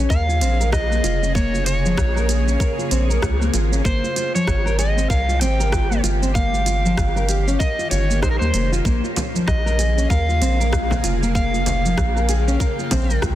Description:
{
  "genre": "organic downtempo",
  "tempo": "96 BPM",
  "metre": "4/4",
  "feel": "swing 59% on 16ths",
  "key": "Bb dorian",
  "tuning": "A4 = 440 Hz",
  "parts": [
    { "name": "bowed-like drone", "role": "sustained chords", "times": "0.0-13.3 s", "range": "C3 to G5", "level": "-29 LUFS", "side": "right 1 dB", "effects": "built-in reverb, phaser, sidechain pumping" },
    { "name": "nylon-string guitar", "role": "arpeggios", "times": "0.0-13.3 s", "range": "F3 to Bb4", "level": "-24 LUFS", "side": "equal", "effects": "digital delay" },
    { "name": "round analog bass", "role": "bass", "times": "0.0-13.3 s", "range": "F1 to Eb2", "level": "-20 LUFS", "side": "equal", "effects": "none" },
    { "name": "overdriven slide guitar", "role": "melody", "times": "0.1-13.2 s", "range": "Bb4 to G5", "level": "-25 LUFS", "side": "equal", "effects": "digital delay" },
    { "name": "electronic kick drum", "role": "drums", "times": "0.1-13.3 s", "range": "none", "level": "-22 LUFS", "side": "equal", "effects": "none" },
    { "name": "organic electronic drum kit", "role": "drums", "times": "0.1-13.3 s", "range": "hi-hat, rim click, shaker", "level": "-28 LUFS", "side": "right 1 dB", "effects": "none" },
    { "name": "frame drum", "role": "percussion", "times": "9.2-13.1 s", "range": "none", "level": "-26 LUFS", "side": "left 1 dB", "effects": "none" }
  ],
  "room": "digital ambience",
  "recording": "dense, heavily limited modern master",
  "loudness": "-17 LUFS",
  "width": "side -13 dB against mid",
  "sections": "0.0-13.3 A section",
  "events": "none",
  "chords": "0.0 Bbm7; 3.9 Abmaj7; 6.4 Eb7/G; 8.9 Bbm7",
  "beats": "0.10 0.73 | 1.35 1.98 2.60 3.23 | 3.85 4.48 5.10 5.73 | 6.35 6.98 7.60 8.23 | 8.85 9.48 10.10 10.73 | 11.35 11.98 12.60 13.23"
}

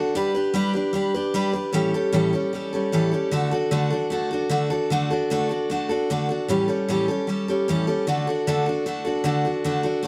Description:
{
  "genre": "rock",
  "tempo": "152 BPM",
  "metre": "4/4",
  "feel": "straight",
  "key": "D major",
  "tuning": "A4 = 439 Hz",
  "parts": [
    { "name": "picked steel-string acoustic guitar", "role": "solo", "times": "0.0-10.1 s", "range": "A2 to B4", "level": "-23 LUFS", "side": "equal", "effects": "none" }
  ],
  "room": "light reverb",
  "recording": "none",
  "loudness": "-23 LUFS",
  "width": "mono",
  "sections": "0.0-9.7 A section",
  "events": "none",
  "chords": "0.1 G; 1.7 A7; 3.3 D; 6.5 A7; 8.1 D",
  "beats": "| 0.15 0.54 0.94 1.34 | 1.74 2.13 2.53 2.93 | 3.32 3.72 4.12 4.51 | 4.91 5.30 5.70 6.10 | 6.49 6.89 7.28 7.68 | 8.07 8.47 8.86 9.26 | 9.65 10.04"
}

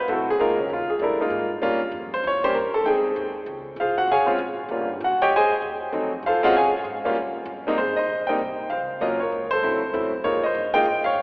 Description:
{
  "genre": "jazz piano trio",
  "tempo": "195 BPM",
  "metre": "4/4",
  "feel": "swing 62% on 8ths",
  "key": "Ab major",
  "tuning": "A4 = 440 Hz",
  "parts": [
    { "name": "warm baby grand piano", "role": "melody", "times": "0.0-11.2 s", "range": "Ab2 to Ab5", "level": "-20 LUFS", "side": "equal", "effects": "none" },
    { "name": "upright bass", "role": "bass", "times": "0.1-11.2 s", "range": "G1 to Bb2", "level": "-42 LUFS", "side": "equal", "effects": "none" }
  ],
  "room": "wet church reverb, RT60 3.3 s",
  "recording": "recorded in a church or concert hall, telephone sound",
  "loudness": "-20 LUFS",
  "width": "side -29 dB against mid",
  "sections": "0.0-7.8 A section; 7.8-11.2 B section",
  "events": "grand piano solo 0.0-7.8",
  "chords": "0.4 Db69; 1.6 Gm7b5; 2.2 Edim7; 2.9 Fm9; 4.1 Bbm7; 4.7 Eb7 (rootless); 5.3 Ab; 5.9 F7b9; 6.5 Bbm7; 7.2 Ebsus2; 7.8 Abmaj7; 9.0 Ebm7; 9.6 D9; 10.2 Db69",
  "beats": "0.09 | 0.39 0.70 1.01 1.32 | 1.62 1.93 2.24 2.55 | 2.85 3.16 3.47 3.78 | 4.09 4.39 4.70 5.01 | 5.32 5.62 5.93 6.24 | 6.55 6.85 7.16 7.47 | 7.78 8.09 8.39 8.70 | 9.01 9.32 9.63 9.94 | 10.24 10.55 10.86 11.17"
}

